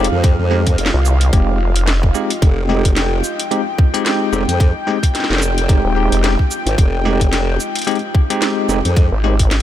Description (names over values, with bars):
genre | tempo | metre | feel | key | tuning
glitch hop | 110 BPM | 4/4 | swing 57% on 16ths | F minor | A4 = 440 Hz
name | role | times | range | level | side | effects
warm analog pad | sustained chords | 0.0-9.6 s | F4 to G5 | -24 LUFS | left 2 dB | chorus, sidechain pumping
bell-like tine electric piano | stabs | 0.0-9.3 s | Ab3 to G4 | -20 LUFS | left 1 dB | medium stereo tremolo, sidechain pumping, analog delay
formant-sweep wobble bass | bass | 0.0-9.1 s | F1 to F2 | -17 LUFS | equal | chorus
drum and bass drum kit | drums | 0.0-9.6 s | hi-hat, shaker, snare drum | -22 LUFS | equal | none
electronic kick drum | drums | 0.2-9.5 s | none | -13 LUFS | equal | none
vowel-sweep wobble bass | bass | 0.9-2.1, 5.8-9.6 s | Eb1 to C2 | -15 LUFS | equal | chorus
room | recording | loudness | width
light reverb | none | -13 LUFS | side -12 dB against mid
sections
0.0-9.6 A section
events
none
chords
0.0 Fm7